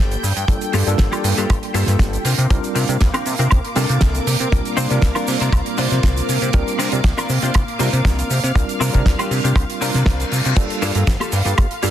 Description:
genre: nu-disco, nu disco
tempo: 119 BPM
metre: 4/4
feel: straight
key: unclear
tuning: A4 = 440 Hz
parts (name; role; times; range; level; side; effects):
- string machine, full ensemble; sustained chords; 0.0-11.9 s; Bb3 to D6; -26 LUFS; right 1 dB; phaser, ensemble chorus, sidechain pumping
- direct-recorded clean electric guitar; riff; 0.0-11.9 s; Bb3 to C5; -25 LUFS; left 4 dB; analog chorus, dub echo
- chorused synth bass; bass; 0.0-11.9 s; G1 to C3; -20 LUFS; equal; none
- damped 70s drum kit; drums; 0.1-11.9 s; crash cymbal, hi-hat, shaker, snare drum, woodblock; -24 LUFS; right 3 dB; small room ambience
- tine electric piano; accompaniment; 0.5-11.9 s; G3 to Bb4; -26 LUFS; right 1 dB; overdrive, fast stereo tremolo, sidechain pumping, dub echo
- kick drum; drums; 0.5-11.7 s; none; -16 LUFS; equal; small room ambience
- reverse cymbal; sound effects; 10.0-10.6 s; none; -28 LUFS; left 6 dB; none
room: light reverb, studio ambience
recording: dense, heavily limited modern master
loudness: -15 LUFS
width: side -11 dB against mid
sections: 0.0-11.9 A section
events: reverse cymbal 10.0-10.6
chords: 0.0 Gm9; 2.3 C9sus4; 10.6 Gm9

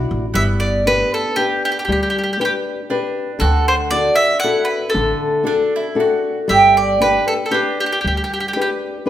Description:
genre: italian folk, Italian serenade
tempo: 117 BPM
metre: 3/4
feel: swing 53% on 8ths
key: G major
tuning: A4 = 442 Hz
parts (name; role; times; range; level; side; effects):
- mandolin; second line; 0.0-9.1 s; B3 to G4; -20 LUFS; right 4 dB; none
- nylon-string guitar; accompaniment; 0.0-9.1 s; D3 to B4; -20 LUFS; left 3 dB; none
- upright bass; bass; 0.0-8.2 s; G1 to D2; -21 LUFS; equal; none
- mandolin; melody; 0.4-8.7 s; G4 to F#5; -18 LUFS; right 1 dB; none
room: moderate recital hall reverb, RT60 1.6 s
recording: recorded in a church or concert hall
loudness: -15 LUFS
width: side -11 dB against mid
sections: 0.3-9.1 A section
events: none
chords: 0.3 G; 3.4 D; 6.5 G

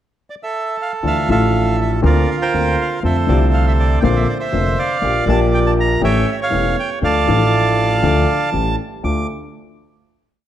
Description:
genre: tango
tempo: 120 BPM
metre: 4/4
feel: rubato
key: D minor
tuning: A4 = 441 Hz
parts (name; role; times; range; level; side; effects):
- bandoneon; melody; 0.3-9.3 s; F4 to D6; -19 LUFS; right 3 dB; none
- warm upright piano; accompaniment; 1.0-9.2 s; E1 to A4; -18 LUFS; left 3 dB; none
- upright bass; bass; 1.0-9.2 s; E1 to F2; -18 LUFS; right 1 dB; none
room: moderate recital hall reverb, RT60 1.3 s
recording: dark, warm production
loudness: -14 LUFS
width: side -11 dB against mid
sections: 0.0-1.0 pickup bar; 1.0-9.0 A section; 9.0-10.5 final chord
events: none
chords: 0.0 N.C.; 1.0 Dmadd9; 2.0 Bbadd9/D; 3.0 F6; 4.0 Bbadd9; 5.0 Gm7/Bb; 6.0 A7; 7.0 Dm; 8.5 A7; 9.0 Dm

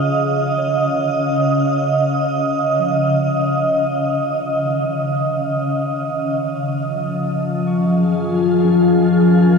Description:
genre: ambient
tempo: 73 BPM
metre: 4/4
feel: straight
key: Db major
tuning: A4 = 444 Hz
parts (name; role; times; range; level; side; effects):
- glassy FM pad; sustained chords; 0.0-9.6 s; Db3 to F5; -15 LUFS; equal; ensemble chorus, built-in reverb, shimmer reverb
- muted felt-like synth keys; arpeggios; 0.0-9.6 s; Eb3 to Db6; -31 LUFS; equal; chorus, ping-pong delay, shimmer reverb
- clear studio double bass section; bass; 6.7-9.6 s; Gb2; -35 LUFS; left 1 dB; none
room: wet huge ambient reverb, RT60 7.7 s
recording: dark, warm production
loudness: -15 LUFS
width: side -5 dB against mid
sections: 0.0-6.7 A section; 6.7-9.6 B section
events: fade-out on synth keys 0.0-6.7; fade-in on double bass section 6.7-9.6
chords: 0.0 Dbadd9; 6.7 Gbmaj9

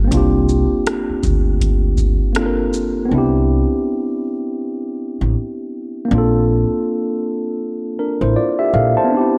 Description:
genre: lo-fi hip hop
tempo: 80 BPM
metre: 4/4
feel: swing 61% on 16ths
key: C major from 3.1 s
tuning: A4 = 440 Hz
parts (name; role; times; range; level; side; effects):
- mellow tine electric piano; accompaniment; 0.0-9.4 s; Bb3 to A5; -20 LUFS; equal; cassette tape, low-pass filter
- upright bass; bass; 0.0-8.9 s; A1 to D2; -20 LUFS; equal; none
- booming analog drum machine; drums; 0.1-2.9 s; hi-hat, kick drum, rim click, shaker; -21 LUFS; equal; vintage 12-bit sampler grit
room: light reverb, digital ambience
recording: cassette tape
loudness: -18 LUFS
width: mono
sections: 0.0-3.1 A section; 3.1-9.4 B section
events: none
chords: 0.0 C9sus4; 3.1 Cmaj9; 6.1 Bbmaj9

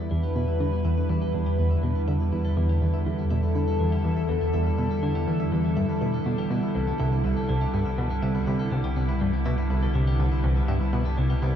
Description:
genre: ambient, sequencer-driven space music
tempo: 122 BPM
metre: 4/4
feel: straight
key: E minor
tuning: A4 = 440 Hz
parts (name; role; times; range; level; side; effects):
- evolving wavetable pad; sustained chords; 0.0-11.6 s; D3 to B4; -27 LUFS; equal; chorus, built-in reverb
- clean electric guitar; arpeggios; 0.0-11.5 s; E3 to E5; -41 LUFS; left 3 dB; auto-pan, ping-pong delay
- warm sub bass; bass; 0.0-11.6 s; C2 to E2; -27 LUFS; equal; none
- pulsing gated texture; texture; 0.0-11.6 s; B3 to B4; -46 LUFS; right 1 dB; none
- plucky analog bass; riff; 0.1-11.6 s; C2 to D3; -27 LUFS; equal; lush chorus, ping-pong delay
room: moderate huge ambient reverb, RT60 7.5 s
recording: dark, warm production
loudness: -22 LUFS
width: side -9 dB against mid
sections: 0.0-11.6 A section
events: fade-in on clean electric guitar 0.0-11.6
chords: 0.0 Em7; 6.5 Cadd9

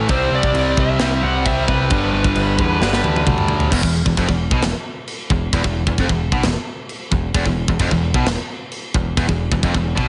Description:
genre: heavy metal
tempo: 132 BPM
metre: 4/4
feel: straight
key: E minor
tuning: A4 = 440 Hz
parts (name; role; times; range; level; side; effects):
- high-gain distorted guitar; riff; 0.0-10.1 s; E2 to C4; -23 LUFS; equal; distortion
- overdriven picked electric bass; bass; 0.0-10.1 s; E1 to E2; -24 LUFS; equal; none
- high-gain lead guitar; melody; 0.1-3.2 s; B4 to F#5; -25 LUFS; equal; distortion
- tight metal drum kit; drums; 0.1-10.1 s; china cymbal, crash cymbal, kick drum, snare drum, toms; -23 LUFS; equal; none
room: small room ambience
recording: nothing above 10.6 kHz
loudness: -18 LUFS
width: mono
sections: 0.0-3.7 A section; 3.7-10.1 B section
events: drum fill 2.8-3.7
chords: 0.1 C; 1.9 G; 3.7 E5

